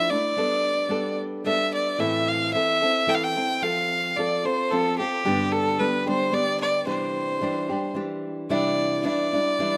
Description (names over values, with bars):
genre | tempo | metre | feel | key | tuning
mexican folk | 111 BPM | 3/4 | straight | C major | A4 = 440 Hz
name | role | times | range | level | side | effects
clear violin | melody | 0.0-9.8 s | G4 to G5 | -26 LUFS | equal | none
nylon-string guitar | accompaniment | 0.0-9.8 s | G2 to A4 | -29 LUFS | equal | none
room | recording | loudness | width
light reverb, small room ambience | rough home demo mix, lossy compression artefacts | -24 LUFS | mono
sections
0.0-8.5 A section; 8.5-9.8 A section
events
none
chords
0.4 Gadd9; 2.0 Am; 3.6 F; 5.3 G; 6.9 Cadd9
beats
| 0.36 0.90 1.45 | 2.00 2.54 3.09 | 3.63 4.17 4.71 | 5.25 5.79 6.33 | 6.87 7.41 7.96 | 8.51 9.05 9.59